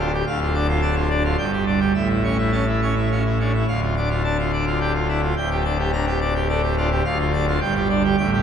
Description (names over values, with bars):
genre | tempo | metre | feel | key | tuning
classical, organ toccata | 106 BPM | 3/4 | straight | D minor | A4 = 442 Hz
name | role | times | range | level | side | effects
pipe organ, full organ | solo | 0.0-8.4 s | D1 to Bb5 | -18 LUFS | equal | none
room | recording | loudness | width
wet cathedral reverb, RT60 4.4 s | recorded in a church or concert hall | -18 LUFS | side -8 dB against mid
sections
0.0-8.4 A section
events
none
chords
0.3 Dm; 1.4 G5; 2.0 A; 3.7 Dm; 5.4 Gm/D; 7.1 Dm; 7.6 G5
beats
| 0.27 0.82 1.39 | 1.95 2.53 3.10 | 3.67 4.24 4.81 | 5.37 5.93 6.49 | 7.05 7.61 8.18